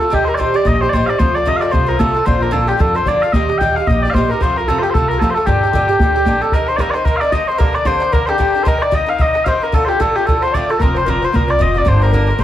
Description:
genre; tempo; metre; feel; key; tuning
celtic folk, Celtic reel; 225 BPM; 4/4; swing 58% on 8ths; unclear; A4 = 443 Hz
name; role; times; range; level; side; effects
mellow small bagpipes; melody; 0.0-12.4 s; G4 to G5; -17 LUFS; left 1 dB; tape echo
bright baroque flute; second line; 0.0-12.4 s; F4 to G5; -22 LUFS; left 4 dB; none
Irish bouzouki; accompaniment; 0.0-12.4 s; G2 to G4; -21 LUFS; right 2 dB; none
bodhran; percussion; 0.0-12.4 s; none; -19 LUFS; equal; none
upright bass; bass; 0.1-6.4, 10.8-12.4 s; F1 to G2; -18 LUFS; equal; none
room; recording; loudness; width
wet small room ambience, RT60 0.5 s; heard from further back in the room; -12 LUFS; side -12 dB against mid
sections
0.0-6.5 A section; 6.5-12.4 B section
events
none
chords
0.1 Eb; 1.2 F; 2.3 Bb; 3.3 Eb; 4.4 F; 5.5 Gm; 6.5 Eb; 7.6 Gm; 8.7 Eb; 9.7 Dm; 10.8 Fsus4; 11.9 Gm

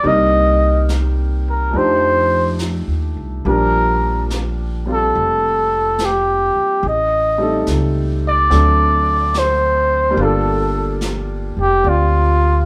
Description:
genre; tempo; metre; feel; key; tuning
jazz ballad; 71 BPM; 4/4; swing 67% on 8ths; unclear; A4 = 440 Hz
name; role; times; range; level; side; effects
breathy trumpet; melody; 0.0-12.7 s; F4 to Eb5; -18 LUFS; equal; none
clear baby grand piano; accompaniment; 0.0-12.7 s; F3 to D5; -24 LUFS; equal; none
upright bass; bass; 0.0-12.7 s; F1 to F2; -21 LUFS; equal; none
jazz brush drum kit; drums; 0.0-12.7 s; brushed snare drum, hi-hat, snare drum; -32 LUFS; equal; none
room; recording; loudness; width
moderate studio reverb, RT60 0.7 s; band playing live in one room; -16 LUFS; mono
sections
0.0-12.7 A section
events
none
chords
0.0 Cm7; 1.7 F13; 3.4 Bb6; 6.8 Am7b5; 8.5 D7; 10.2 Gm9

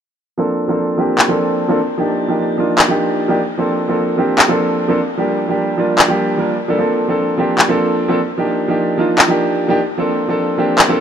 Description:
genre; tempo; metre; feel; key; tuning
future bass; 150 BPM; 4/4; swing 54% on 16ths, half-time; Bb major; A4 = 442 Hz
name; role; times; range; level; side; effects
clear concert grand piano; accompaniment; 0.4-11.0 s; F3 to Bb4; -15 LUFS; right 1 dB; low-pass filter, ping-pong delay
electronic handclaps; drums; 1.2-10.9 s; none; -16 LUFS; left 1 dB; none
room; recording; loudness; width
moderate shimmer reverb, RT60 5.2 s; dark, warm production; -13 LUFS; side -8 dB against mid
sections
0.4-11.0 A section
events
filter sweep on grand piano 0.4-11.0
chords
0.4 Bbmaj9; 2.0 Ebmaj9; 3.6 Bbmaj9; 5.2 Gm7; 6.8 Bbmaj9; 8.4 Ebmaj9; 10.0 Bbmaj9

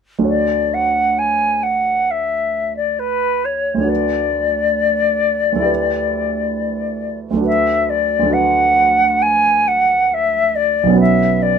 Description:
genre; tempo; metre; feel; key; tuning
classical, impressionist duo for flute and grand piano; 67 BPM; 4/4; rubato; D major; A4 = 440 Hz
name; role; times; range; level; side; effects
warm grand piano; accompaniment; 0.2-11.6 s; B1 to C#5; -20 LUFS; right 4 dB; none
silver concert flute; melody; 0.3-11.6 s; B4 to G#5; -15 LUFS; left 2 dB; none
room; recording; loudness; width
light reverb; close, detailed microphones; -14 LUFS; side -7 dB against mid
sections
0.3-11.6 A section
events
none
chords
0.3 Dmaj7; 3.9 Bm7/D; 7.5 D6; 11.0 Bmadd9

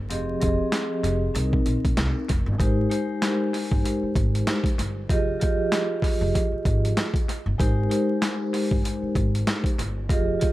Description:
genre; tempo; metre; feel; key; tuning
hip hop, boom-bap hip-hop; 96 BPM; 4/4; swing 57% on 16ths; unclear; A4 = 440 Hz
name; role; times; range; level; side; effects
upright bass; bass; 0.0-10.3 s; F1 to C2; -26 LUFS; equal; none
vibraphone with soft mallets; accompaniment; 0.1-10.5 s; F3 to Eb5; -25 LUFS; equal; high-pass filter, low-pass filter, analog delay
boom bap sampler-style drum kit; drums; 0.1-10.5 s; handclaps, hi-hat, kick drum, snare drum; -25 LUFS; equal; overdrive, analog delay
room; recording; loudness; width
studio ambience; echo-heavy mix, vinyl crackle; -21 LUFS; side -16 dB against mid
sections
0.0-2.6 A section; 2.6-10.5 B section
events
none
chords
0.1 Fm9; 1.3 Cm7; 2.6 Abmaj9; 5.1 Fm9; 7.6 Abmaj9

